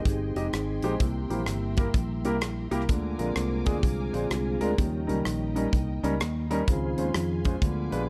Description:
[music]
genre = uptempo gospel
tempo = 127 BPM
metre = 4/4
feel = swing 64% on 8ths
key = unclear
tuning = A4 = 440 Hz
[part]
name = mellow tonewheel organ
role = sustained chords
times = 0.0-8.1 s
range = D3 to Db5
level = -34 LUFS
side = equal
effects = fast rotary speaker, chorus vibrato
[part]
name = warm studio string section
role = sustained chords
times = 0.0-8.1 s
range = Eb5 to D6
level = -48 LUFS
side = equal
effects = none
[part]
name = fingered electric bass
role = bass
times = 0.1-8.1 s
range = F1 to F2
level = -34 LUFS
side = equal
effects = none
[part]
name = modern studio drum kit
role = drums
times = 0.1-8.0 s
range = hi-hat, kick drum, rim click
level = -31 LUFS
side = equal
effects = none
[part]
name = warm concert grand piano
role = accompaniment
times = 0.4-8.1 s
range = C3 to Eb5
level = -33 LUFS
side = equal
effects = none
[sound]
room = light reverb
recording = faint mains hum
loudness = -28 LUFS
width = mono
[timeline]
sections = 0.0-8.1 A section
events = tonewheel organ solo 0.0-8.1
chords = 0.0 Abmaj7; 1.0 C7; 2.9 Bb7; 4.8 Eb7; 6.7 Dbmaj7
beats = 0.06 0.53 | 1.00 1.48 1.95 2.42 | 2.89 3.37 3.84 4.31 | 4.79 5.26 5.73 6.21 | 6.68 7.15 7.63

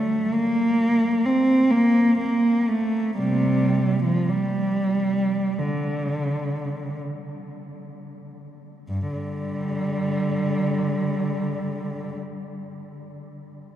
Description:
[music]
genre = classical, free, expressive piece for unaccompanied cello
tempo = free time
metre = none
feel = none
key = G minor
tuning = A4 = 440 Hz
[part]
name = warm cello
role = solo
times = 0.0-12.2 s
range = G2 to C4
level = -21 LUFS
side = right 1 dB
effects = none
[sound]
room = wet cathedral reverb, RT60 7.2 s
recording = dark, warm production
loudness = -20 LUFS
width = side -11 dB against mid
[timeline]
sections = 0.0-8.9 A section; 8.9-13.8 B section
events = slowing down 0.0-8.9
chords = none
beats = free time

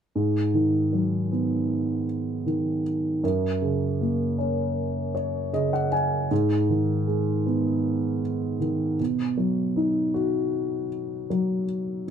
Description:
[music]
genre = pop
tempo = 78 BPM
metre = 4/4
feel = straight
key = unclear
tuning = A4 = 444 Hz
[part]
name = dark baby grand piano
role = accompaniment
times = 0.2-12.1 s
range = F#2 to G#5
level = -23 LUFS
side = equal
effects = none
[sound]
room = moderate studio reverb, RT60 0.5 s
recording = band playing live in one room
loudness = -23 LUFS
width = side -8 dB against mid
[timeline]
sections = 0.2-12.1 A section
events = grand piano fill 4.8-6.3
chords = 0.2 G#m7; 3.2 F#; 6.3 G#m; 9.0 B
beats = | 0.16 0.93 1.69 2.46 | 3.23 4.00 4.77 5.54 | 6.31 7.08 7.85 8.62 | 9.39 10.16 10.93 11.69

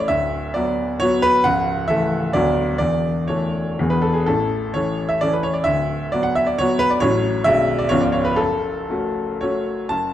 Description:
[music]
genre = classical, romantic triple-time dance for piano with dotted rhythms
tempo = 109-144 BPM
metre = 3/4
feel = rubato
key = F# minor from 7.0 s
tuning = A4 = 441 Hz
[part]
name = clear baby grand piano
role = solo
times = 0.0-10.1 s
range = B0 to A5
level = -17 LUFS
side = equal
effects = none
[sound]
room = moderate recital hall reverb, RT60 1.4 s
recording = dark, warm production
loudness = -17 LUFS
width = side -11 dB against mid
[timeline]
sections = 0.0-9.9 A section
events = none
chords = 0.1 Bm/D; 1.4 A/C#; 2.3 Bm/D; 2.8 A/E; 3.8 E; 4.3 A; 5.6 Bm/D; 7.0 F#m/A; 7.4 G#m7b5/B; 7.9 C#7; 8.4 F#m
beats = | 0.11 0.56 1.02 | 1.44 1.89 2.34 | 2.79 3.28 3.79 | 4.25 4.72 5.20 | 5.64 6.10 6.57 | 7.00 7.43 7.90 | 8.38 8.90 9.42 | 9.91

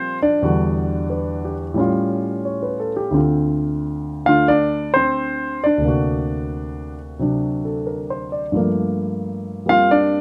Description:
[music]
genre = solo jazz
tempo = 89 BPM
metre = 4/4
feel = swing 69% on 8ths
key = unclear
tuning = A4 = 443 Hz
[part]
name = warm concert grand piano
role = solo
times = 0.0-10.2 s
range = D2 to F5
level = -20 LUFS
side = equal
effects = none
[sound]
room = light reverb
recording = close, detailed microphones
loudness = -20 LUFS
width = mono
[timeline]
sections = 0.0-10.2 A section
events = none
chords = 0.4 Em9; 1.8 A7b13; 3.1 Dm7; 5.8 D7b13; 8.5 Gm9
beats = | 0.42 1.10 1.77 2.45 | 3.12 3.80 4.48 5.15 | 5.83 6.51 7.18 7.86 | 8.54 9.21 9.89

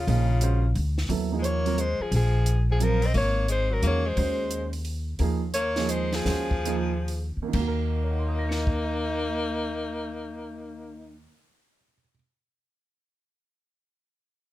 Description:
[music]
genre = modal jazz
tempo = 123-176 BPM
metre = 3/4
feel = swing 65% on 8ths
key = Eb dorian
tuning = A4 = 440 Hz
[part]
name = breathy soprano saxophone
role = melody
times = 0.0-11.2 s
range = Eb4 to Eb5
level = -30 LUFS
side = left 1 dB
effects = none
[part]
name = breathy tenor saxophone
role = second line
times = 0.0-11.2 s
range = Db3 to C4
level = -33 LUFS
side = left 4 dB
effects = none
[part]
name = upright bass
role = bass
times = 0.0-11.3 s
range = Ab1 to Fb2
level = -26 LUFS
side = equal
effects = none
[part]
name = warm upright piano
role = accompaniment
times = 0.1-12.2 s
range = Eb2 to Db7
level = -31 LUFS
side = right 7 dB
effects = none
[part]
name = compact cocktail drum kit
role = drums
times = 0.1-8.8 s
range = crash cymbal, hi-hat, kick drum, snare drum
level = -33 LUFS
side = equal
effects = none
[sound]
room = light reverb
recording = none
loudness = -23 LUFS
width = side -15 dB against mid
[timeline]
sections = 0.0-7.5 A section; 7.5-10.5 B section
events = slowing down 5.2-7.5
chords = 0.0 Eb13sus4; 7.5 Ebm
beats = | 0.08 0.42 0.76 | 1.10 1.44 1.78 | 2.12 2.46 2.80 | 3.15 3.49 3.83 | 4.17 4.51 4.85 | 5.19 5.54 5.89 | 6.26 6.65 7.07 | 7.54 8.03 8.51 | 9.00 9.49 9.97

